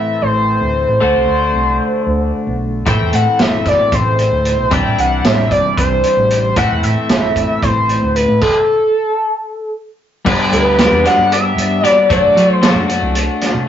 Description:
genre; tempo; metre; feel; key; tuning
psychedelic rock; 227 BPM (eighths); 7/8; straight; A dorian; A4 = 436 Hz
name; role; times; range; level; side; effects
overdriven synth lead; melody; 0.0-12.7 s; A4 to G5; -14 LUFS; left 1 dB; distortion, chorus
twelve-string electric guitar; riff; 0.0-13.7 s; G2 to G4; -18 LUFS; left 2 dB; harmonic tremolo
hollow-body short-scale fingered electric bass; bass; 0.2-13.7 s; F#1 to F#3; -19 LUFS; right 1 dB; none
vintage drum kit; drums; 2.9-13.5 s; crash cymbal, hi-hat, kick drum, snare drum; -18 LUFS; right 2 dB; none
room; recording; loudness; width
moderate small room reverb, RT60 0.5 s; rough rehearsal-room recording, nothing above 7.6 kHz; -11 LUFS; side -10 dB against mid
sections
0.0-10.3 A section; 10.3-13.7 B section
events
stop 8.4-10.3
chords
0.0 Am; 1.0 D; 2.9 Am; 4.7 Cadd9; 6.6 Am; 8.4 N.C.; 10.3 G; 12.1 D/F#

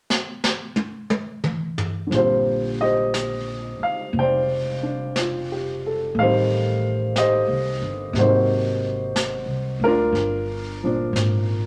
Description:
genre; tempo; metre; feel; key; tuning
jazz ballad; 60 BPM; 4/4; swing 66% on 8ths; Bb major; A4 = 442 Hz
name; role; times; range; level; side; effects
jazz brush drum kit; drums; 0.1-11.7 s; brushed snare drum, hi-hat, snare drum, toms; -29 LUFS; equal; none
warm baby grand piano; accompaniment; 2.1-11.7 s; Bb2 to G5; -24 LUFS; equal; none
upright bass; bass; 2.1-11.7 s; F1 to D2; -28 LUFS; equal; none
room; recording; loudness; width
moderate studio reverb, RT60 0.7 s; none; -23 LUFS; mono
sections
0.0-2.1 A section; 2.1-11.7 B section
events
drum fill 0.1-2.1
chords
0.0 N.C.; 2.1 Bb69; 6.2 Am7b5; 8.2 Ab9; 10.2 Gm7

